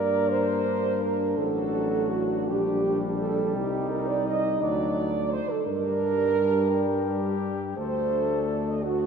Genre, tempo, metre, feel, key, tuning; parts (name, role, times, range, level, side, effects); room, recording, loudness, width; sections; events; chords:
classical, hymn-like piece for brass band; 56 BPM (dotted quarters); 6/8; rubato; G minor; A4 = 440 Hz
dark cornet; melody; 0.0-9.1 s; D4 to Bb4; -33 LUFS; left 6 dB
mellow French horn section; second line; 0.0-9.1 s; F#4 to Eb5; -26 LUFS; right 5 dB
dark trombone section; accompaniment; 0.0-9.1 s; D4 to Eb4; -33 LUFS; left 5 dB
warm trombone; accompaniment; 0.0-9.1 s; F#3 to Bb3; -33 LUFS; equal
mellow tuba; bass; 0.0-9.1 s; A1 to G2; -30 LUFS; left 1 dB
wet cathedral reverb, RT60 4.4 s; minimal, uncompressed stereo recording; -23 LUFS; side -6 dB against mid
0.0-9.1 A section
0.0 Gm; 1.4 D/A; 2.5 Gm/Bb; 3.5 Cm; 4.6 D; 5.7 Gm; 7.8 D